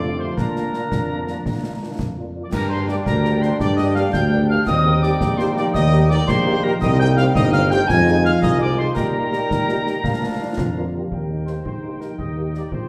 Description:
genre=military-style march for wind band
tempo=112 BPM (dotted quarters)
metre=6/8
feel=straight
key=Eb major from 6.8 s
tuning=A4 = 440 Hz
part: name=dark trumpet section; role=melody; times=0.0-12.9 s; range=Bb4 to Ab5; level=-29 LUFS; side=equal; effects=none
part: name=mellow euphonium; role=second line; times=0.0-12.9 s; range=Bb2 to G4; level=-30 LUFS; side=equal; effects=none
part: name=piccolo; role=second line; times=0.0-10.9 s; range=Bb5 to Ab6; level=-29 LUFS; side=equal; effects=none
part: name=warm woodwind section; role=second line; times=0.0-12.9 s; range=D4 to Ab5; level=-32 LUFS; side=equal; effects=none
part: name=mellow French horn section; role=accompaniment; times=0.0-12.6 s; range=A3 to Ab4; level=-30 LUFS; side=equal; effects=none
part: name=clear trombone section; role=sustained chords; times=0.0-10.9 s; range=D3 to Bb3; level=-32 LUFS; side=equal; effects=none
part: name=mellow tuba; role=bass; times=0.0-12.9 s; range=G1 to Bb2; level=-23 LUFS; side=equal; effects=none
part: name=concert snare drum, concert bass drum and clash cymbals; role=drums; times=0.4-12.9 s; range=none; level=-29 LUFS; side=equal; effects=none
room=wet large studio reverb, RT60 1.3 s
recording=heard from further back in the room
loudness=-19 LUFS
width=mono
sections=0.0-2.5 A section; 2.5-11.1 B section; 11.1-12.9 C section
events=none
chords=0.4 Bb; 2.5 Gm; 4.7 Eb; 6.8 Cm; 7.9 Fm7; 9.0 Eb/Bb; 10.0 Bb; 11.1 Eb

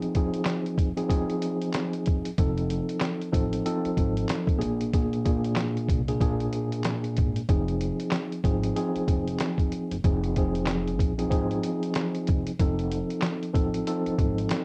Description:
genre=hip hop, boom-bap hip-hop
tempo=94 BPM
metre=4/4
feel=swing 60% on 16ths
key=F dorian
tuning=A4 = 441 Hz
part: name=mellow tine electric piano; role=accompaniment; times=0.0-14.6 s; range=Bb2 to A4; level=-30 LUFS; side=equal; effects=cassette tape, high-pass filter, low-pass filter
part: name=trip hop sampler-style drum kit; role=drums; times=0.0-14.6 s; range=handclaps, hi-hat, kick drum, snare drum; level=-29 LUFS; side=equal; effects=cassette tape
part: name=upright bass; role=bass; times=2.4-14.4 s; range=F1 to C2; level=-34 LUFS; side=equal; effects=tube saturation
room=light reverb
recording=home recording on cassette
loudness=-27 LUFS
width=mono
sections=0.0-14.6 A section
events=break 0.0-2.4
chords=0.0 Fm7; 2.4 F7; 4.6 Bb7; 7.5 Fm7; 12.6 F7

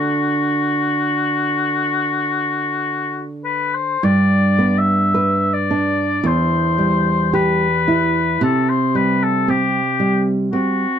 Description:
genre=romantic duo for oboe and classical guitar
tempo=47-58 BPM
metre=4/4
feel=rubato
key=G major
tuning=A4 = 439 Hz
part: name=warm oboe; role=melody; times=0.0-11.0 s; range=F#4 to E5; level=-19 LUFS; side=left 5 dB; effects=none
part: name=nylon-string guitar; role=accompaniment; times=0.0-11.0 s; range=E2 to B4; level=-18 LUFS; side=right 2 dB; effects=none
room=light reverb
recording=dark, warm production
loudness=-15 LUFS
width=side -8 dB against mid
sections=0.0-4.0 A section; 4.0-11.0 A section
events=none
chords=0.0 D; 4.0 G; 6.3 Em; 8.4 C5

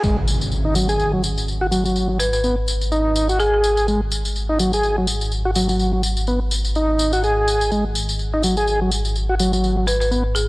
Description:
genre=breakbeat, breaks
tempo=125 BPM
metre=4/4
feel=swing 56% on 16ths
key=G# minor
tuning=A4 = 440 Hz
part: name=tonewheel organ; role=riff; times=0.0-10.2 s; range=F#3 to G#4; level=-20 LUFS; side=equal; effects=chorus vibrato, low-pass filter, analog delay
part: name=dark detuned saw bass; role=bass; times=0.0-10.5 s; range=G#1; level=-22 LUFS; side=equal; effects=none
part: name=tambourine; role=drums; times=0.0-10.5 s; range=none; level=-26 LUFS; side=left 2 dB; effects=none
part: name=impact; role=sound effects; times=0.0-2.0 s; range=none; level=-25 LUFS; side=equal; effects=none
part: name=folk marimba with hard mallets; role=melody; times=2.2-3.6, 9.9-10.5 s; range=G#4 to B4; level=-24 LUFS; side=equal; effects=old record sound, vintage 12-bit sampler grit, analog delay
room=light reverb, digital ambience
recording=dry, gritty hardware recording, cassette tape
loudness=-17 LUFS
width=side -21 dB against mid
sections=0.0-10.5 A section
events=impact 0.0-2.0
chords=0.0 G#7(no3)

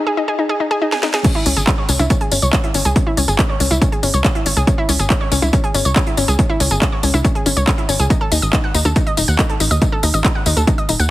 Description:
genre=uplifting trance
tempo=140 BPM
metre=4/4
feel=straight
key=C# minor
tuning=A4 = 438 Hz
part: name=analog pluck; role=arpeggios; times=0.0-11.0 s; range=C#4 to F#5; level=-20 LUFS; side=left 2 dB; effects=chorus, sidechain pumping, digital delay
part: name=techno drum kit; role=drums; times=0.9-11.1 s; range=crash cymbal, handclaps, hi-hat, percussion blips, snare drum, tambourine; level=-20 LUFS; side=equal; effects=sidechain pumping on hats, high-pass filter on hats, sidechain pumping on perc, high-pass filter on perc, high-pass filter on snare, sidechain pumping on cymbals, high-pass filter on cymbals, high-pass filter on room
part: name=electronic kick drum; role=drums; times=1.2-10.8 s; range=none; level=-17 LUFS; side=equal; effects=high-pass filter on kick, high-pass filter on room
part: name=tight sequencer bass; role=bass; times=1.5-11.1 s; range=D#1 to D#2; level=-17 LUFS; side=equal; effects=sidechain pumping, high-pass filter
room=light reverb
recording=heavily compressed radio sound, multiband compression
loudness=-14 LUFS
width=side -16 dB against mid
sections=0.0-1.2 A section; 1.2-11.1 B section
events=break 0.0-1.2; build-up 0.0-1.2; drum fill 0.9-1.2; drop 1.2-11.1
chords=0.0 G#5; 1.2 C#m; 8.1 D#dim

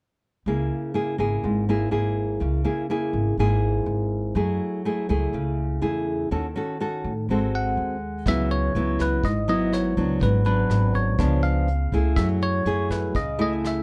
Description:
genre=bossa nova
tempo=123 BPM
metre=4/4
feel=straight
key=C# minor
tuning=A4 = 440 Hz
part: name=nylon-string guitar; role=accompaniment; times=0.5-13.8 s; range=G#2 to A4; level=-27 LUFS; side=equal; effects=none
part: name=upright bass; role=bass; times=0.5-13.8 s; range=G#1 to A2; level=-28 LUFS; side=equal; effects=none
part: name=bell-like tine electric piano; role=melody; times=7.6-13.8 s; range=B4 to F#5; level=-30 LUFS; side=equal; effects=phaser
part: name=vintage brush drum kit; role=drums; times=8.3-13.8 s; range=hi-hat, kick drum, rim click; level=-32 LUFS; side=equal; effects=none
room=light reverb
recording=dark, warm production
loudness=-24 LUFS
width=mono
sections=0.5-8.3 A section; 8.3-13.8 B section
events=none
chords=0.5 C#m6; 4.4 F#m9; 6.3 D#m7b5; 7.3 G#7b9; 8.3 C#m7; 10.2 G#m7b5; 11.2 C#7b9; 12.2 F#m9

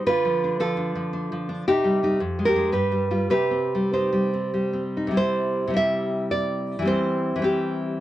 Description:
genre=romantic piece for solo classical guitar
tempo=93-113 BPM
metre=3/4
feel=rubato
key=C minor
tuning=A4 = 438 Hz
part: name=nylon-string guitar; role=solo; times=0.0-8.0 s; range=F2 to E5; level=-21 LUFS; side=equal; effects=none
room=light reverb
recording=dry, close 1970s-style studio recording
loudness=-21 LUFS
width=side -14 dB against mid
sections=0.0-5.2 A section; 5.2-8.0 B section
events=none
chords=0.0 Bdim/D; 1.7 Cm; 2.2 Ddim/F; 2.7 G7; 3.3 Cm; 5.2 C; 6.9 C/E

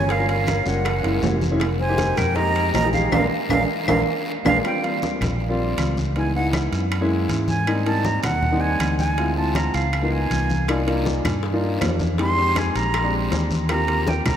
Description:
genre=Afro-Cuban jazz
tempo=159 BPM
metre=4/4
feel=straight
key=unclear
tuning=A4 = 439 Hz
part: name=breathy bright concert flute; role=melody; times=0.0-14.4 s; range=F5 to C6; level=-25 LUFS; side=right 2 dB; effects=none
part: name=breathy mellow silver concert flute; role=second line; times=0.0-4.6 s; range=Ab4 to Eb5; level=-29 LUFS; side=equal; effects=none
part: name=warm grand piano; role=accompaniment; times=0.0-14.3 s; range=G3 to G4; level=-25 LUFS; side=left 1 dB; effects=none
part: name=fingered electric bass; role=bass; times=0.0-14.4 s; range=F1 to Ab2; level=-24 LUFS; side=equal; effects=none
part: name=bongos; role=percussion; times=0.1-4.5, 10.7-14.3 s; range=none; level=-33 LUFS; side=left 7 dB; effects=none
part: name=congas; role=percussion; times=0.1-14.4 s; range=none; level=-29 LUFS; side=left 1 dB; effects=none
part: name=guiro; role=percussion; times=0.1-14.4 s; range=none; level=-37 LUFS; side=left 2 dB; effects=none
part: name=timbales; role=percussion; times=0.1-14.4 s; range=none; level=-30 LUFS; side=right 6 dB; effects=none
part: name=claves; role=percussion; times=0.5-14.4 s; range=none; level=-36 LUFS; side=left 5 dB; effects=none
room=wet cathedral reverb, RT60 5.5 s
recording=in a vast, echoing space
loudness=-19 LUFS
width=side -9 dB against mid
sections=0.0-4.6 A section; 4.6-14.4 B section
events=band accent 3.1-4.6; drum fill 4.1-4.6; flute solo 4.6-14.4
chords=0.1 Gm7b5; 0.9 Gb9; 1.6 Fm11; 3.1 Bb7; 4.6 Bbm69; 6.2 Dbm7; 6.9 Gb9; 7.7 Abmaj9; 9.2 Dm7b5; 9.9 Db13; 10.7 Cm11; 12.2 Fm9; 12.9 Bb13; 13.7 Eb69

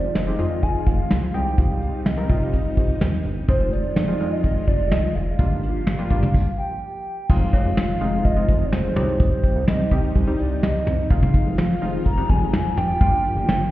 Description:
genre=synth-pop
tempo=126 BPM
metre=4/4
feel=straight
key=F dorian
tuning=A4 = 442 Hz
part: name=hollow clarinet-like synth lead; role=melody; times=0.0-13.7 s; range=C5 to Bb5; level=-27 LUFS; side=equal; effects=chorus, ping-pong delay
part: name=funky polysynth comp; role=accompaniment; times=0.0-13.5 s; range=G3 to Bb4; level=-29 LUFS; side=equal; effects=chorus
part: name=soft string machine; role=sustained chords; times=0.0-13.7 s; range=C3 to G4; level=-30 LUFS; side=equal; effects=ensemble chorus
part: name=chorused synth bass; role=bass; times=0.2-13.7 s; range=F1 to C3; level=-24 LUFS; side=equal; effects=none
part: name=soft brush drum kit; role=drums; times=0.2-13.6 s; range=cowbell, crash cymbal, hi-hat, kick drum, snare drum, toms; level=-21 LUFS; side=equal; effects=none
room=light reverb, studio ambience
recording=heard muffled through a wall, stone room reverb, EQ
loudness=-18 LUFS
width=side -15 dB against mid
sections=0.0-7.3 A section; 7.3-13.7 B section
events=stop 6.3-7.3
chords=0.0 Fm7; 1.3 Cm; 3.5 Fm7; 5.4 Gm7; 7.3 Fm7; 9.0 Cm; 11.1 Fm7; 13.0 Gm7

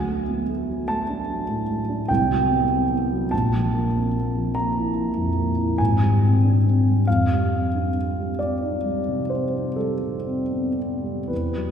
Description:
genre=classical, impressionist solo piano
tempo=37-51 BPM (dotted quarters)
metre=9/8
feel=rubato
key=unclear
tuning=A4 = 439 Hz
part: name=warm concert grand piano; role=solo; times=0.0-11.7 s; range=G#1 to Bb5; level=-20 LUFS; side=equal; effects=none
room=wet concert hall reverb, RT60 2.4 s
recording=heard from further back in the room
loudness=-20 LUFS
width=side -8 dB against mid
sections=0.0-11.7 A section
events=none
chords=0.0 D; 2.1 C5; 3.3 Bb5; 5.8 G#maj7#11; 7.1 F9

